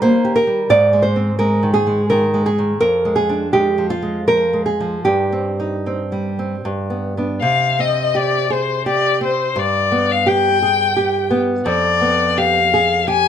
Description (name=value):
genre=romantic duo for violin and classical guitar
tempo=75-90 BPM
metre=3/4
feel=rubato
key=C minor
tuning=A4 = 440 Hz
part: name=nylon-string guitar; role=accompaniment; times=0.0-13.3 s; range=F2 to D5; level=-16 LUFS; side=right 1 dB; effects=none
part: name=rich violin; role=melody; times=7.4-13.3 s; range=C5 to Ab5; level=-16 LUFS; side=left 6 dB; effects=none
room=light reverb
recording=none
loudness=-15 LUFS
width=side -9 dB against mid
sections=0.0-7.4 A section; 7.4-13.3 B section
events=none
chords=0.0 Eb; 0.7 Ab; 2.8 Ddim/F; 5.1 Cm/G; 6.6 G; 7.4 C5; 9.6 G; 11.7 G7/F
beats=0.02 | 0.69 1.39 2.10 | 2.82 3.53 4.29 | 5.07 5.86 6.65 | 7.42 8.15 8.85 | 9.57 10.27 10.97 | 11.67 12.39 13.09